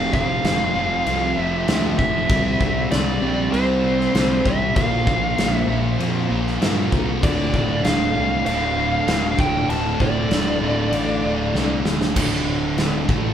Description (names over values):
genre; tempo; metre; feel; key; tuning
hard rock; 97 BPM; 4/4; straight; D minor; A4 = 439 Hz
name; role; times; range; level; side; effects
dark smooth lead guitar; melody; 0.0-11.8 s; C5 to A5; -23 LUFS; equal; overdrive
phased analog pad; sustained chords; 0.1-13.3 s; F3 to F5; -35 LUFS; left 1 dB; none
high-gain distorted guitar; riff; 0.0-13.3 s; D2 to C4; -28 LUFS; equal; distortion
sludgy distorted guitar; riff; 0.0-13.3 s; D2 to C4; -27 LUFS; left 4 dB; overdrive
sludgy distorted guitar; riff; 0.0-13.3 s; D2 to C4; -26 LUFS; right 5 dB; overdrive
fuzz fingered electric bass; bass; 0.0-13.3 s; D1 to G2; -27 LUFS; equal; overdrive
big rock drum kit; drums; 0.1-13.2 s; crash cymbal, kick drum, snare drum; -23 LUFS; equal; none
room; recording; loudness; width
wet large studio reverb, RT60 0.8 s; band playing live in one room; -18 LUFS; side -9 dB against mid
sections
0.0-12.2 A section; 12.2-13.3 B section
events
drum fill 11.5-12.2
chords
0.0 F5; 2.3 C; 4.8 Bb5; 7.2 Dm; 12.2 D5